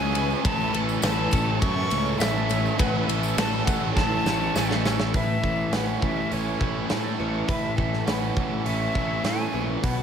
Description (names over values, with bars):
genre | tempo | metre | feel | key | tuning
rock, shoegaze and dream pop | 102 BPM | 4/4 | straight | A major | A4 = 442 Hz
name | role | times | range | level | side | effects
bright silver concert flute | melody | 0.0-10.0 s | C#5 to C#6 | -30 LUFS | left 1 dB | digital delay
picked twelve-string acoustic guitar | arpeggios | 0.0-10.0 s | G#4 to C#5 | -35 LUFS | left 2 dB | ensemble chorus, digital delay
overdriven electric guitar | riff | 0.0-10.0 s | A2 to A4 | -29 LUFS | right 10 dB | reverse reverb
thick fuzz guitar | riff | 0.0-10.0 s | A2 to E4 | -30 LUFS | left 9 dB | distortion, ensemble chorus
fuzz picked electric bass | bass | 0.0-10.0 s | A1 to A2 | -29 LUFS | equal | overdrive
big rock drum kit | drums | 0.2-10.0 s | hi-hat, kick drum, ride cymbal, snare drum | -28 LUFS | equal | none
tambourine | percussion | 0.3-5.0 s | none | -42 LUFS | left 9 dB | none
room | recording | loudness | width
light reverb, studio reverb | none | -22 LUFS | side -8 dB against mid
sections
0.0-5.1 A section; 5.1-10.0 B section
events
drum fill 4.0-5.1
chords
0.4 A